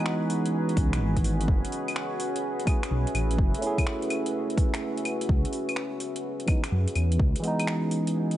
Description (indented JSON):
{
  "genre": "future garage",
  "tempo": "126 BPM",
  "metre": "4/4",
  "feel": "swing 67% on 16ths",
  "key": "C# minor",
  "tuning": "A4 = 440 Hz",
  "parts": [
    { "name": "bright tine electric piano", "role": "accompaniment", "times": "0.0-8.4 s", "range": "E3 to G#4", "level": "-29 LUFS", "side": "right 1 dB", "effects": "phaser, sidechain pumping, analog delay" },
    { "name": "deep dark ambient pad", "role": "sustained chords", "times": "0.0-8.4 s", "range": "C#4 to E5", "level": "-32 LUFS", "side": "equal", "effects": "chorus, built-in reverb, sidechain pumping" },
    { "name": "deep house drum kit", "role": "drums", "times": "0.1-8.4 s", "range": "claves, finger snaps, hi-hat", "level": "-34 LUFS", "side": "left 2 dB", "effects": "overdrive, studio reverb" },
    { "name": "swelling detuned saw bass", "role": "bass", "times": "0.8-7.3 s", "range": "F#1 to F#2", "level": "-26 LUFS", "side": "equal", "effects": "sidechain pumping" },
    { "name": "electronic kick drum", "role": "drums", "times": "0.8-7.3 s", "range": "none", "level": "-24 LUFS", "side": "equal", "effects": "overdrive, studio reverb" }
  ],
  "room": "light reverb, digital ambience",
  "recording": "vinyl crackle, nothing above 10.8 kHz",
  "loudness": "-24 LUFS",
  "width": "side -13 dB against mid",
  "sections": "0.0-8.4 A section",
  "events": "break 4.8-5.3",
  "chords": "0.0 C#m7; 1.5 F#m7; 5.3 C#m7"
}